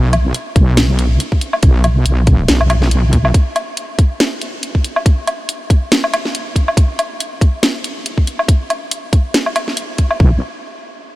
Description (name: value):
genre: deep dubstep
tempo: 140 BPM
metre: 4/4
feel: swing 56% on 16ths, half-time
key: unclear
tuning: A4 = 440 Hz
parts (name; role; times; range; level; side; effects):
- wobble bass; bass; 0.0-3.3, 10.2-10.4 s; B1; -12 LUFS; equal; chorus
- garage drum kit; drums; 0.1-10.2 s; hi-hat, snare drum, woodblock; -18 LUFS; equal; none
- electronic kick drum; drums; 0.6-10.3 s; none; -11 LUFS; equal; none
room: light reverb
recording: none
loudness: -12 LUFS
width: side -18 dB against mid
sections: 0.0-10.2 A section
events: none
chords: none